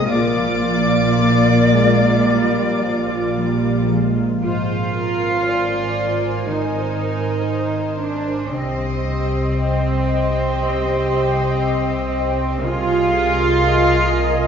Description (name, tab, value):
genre	cinematic, emotional film score for orchestra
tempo	58 BPM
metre	4/4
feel	uneven beats, rubato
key	Ab lydian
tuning	A4 = 442 Hz
part	warm symphonic violin section	melody	0.0-14.5 s	G5 to Eb6	-31 LUFS	left 2 dB	none
part	bright silver concert flute	second line	0.0-3.8 s	D5	-23 LUFS	left 3 dB	none
part	clear clarinet	second line	0.0-3.8 s	D5	-28 LUFS	left 2 dB	none
part	warm symphonic violin section	second line	0.0-14.5 s	G4 to Eb5	-29 LUFS	left 3 dB	none
part	dark chamber viola section	accompaniment	0.0-14.5 s	Bb3 to Eb5	-26 LUFS	right 2 dB	none
part	mellow French horn section	sustained chords	0.0-4.4 s	F3 to Bb3	-23 LUFS	left 3 dB	none
part	concert harp	arpeggios	0.0-14.5 s	Ab2 to Bb5	-24 LUFS	left 3 dB	none
part	dark studio double bass section	bass	0.0-14.5 s	Ab1 to C2	-23 LUFS	right 2 dB	none
part	rich symphonic cello section	bass	0.0-14.5 s	Bb2 to F4	-20 LUFS	right 2 dB	none
room	wet concert hall reverb, RT60 1.9 s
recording	heard from further back in the room, nothing above 7.5 kHz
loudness	-16 LUFS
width	side -7 dB against mid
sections	0.0-4.4 A section; 4.4-14.5 A section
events	none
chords	0.1 Bb; 4.4 Abadd9; 8.5 Cm; 12.6 Abadd9/C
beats	| 0.11 1.20 2.28 3.35 | 4.43 5.46 6.48 7.49 | 8.51 9.53 10.55 11.56 | 12.62 13.64